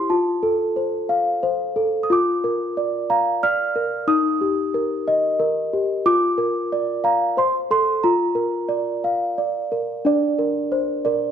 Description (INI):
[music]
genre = children's music, lullaby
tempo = 90 BPM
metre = 3/4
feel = straight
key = Bb major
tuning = A4 = 440 Hz
[part]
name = celesta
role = solo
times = 0.0-11.3 s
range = D4 to F6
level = -18 LUFS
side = equal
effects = none
[sound]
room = moderate recital hall reverb, RT60 1.4 s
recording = dark, warm production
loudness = -18 LUFS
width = side -8 dB against mid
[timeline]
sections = 0.0-10.0 A section; 10.0-11.3 A section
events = none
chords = 0.1 F; 2.1 Bb; 4.1 Eb; 6.1 Bb/F; 7.4 Am; 8.0 Bb; 10.0 Bbadd9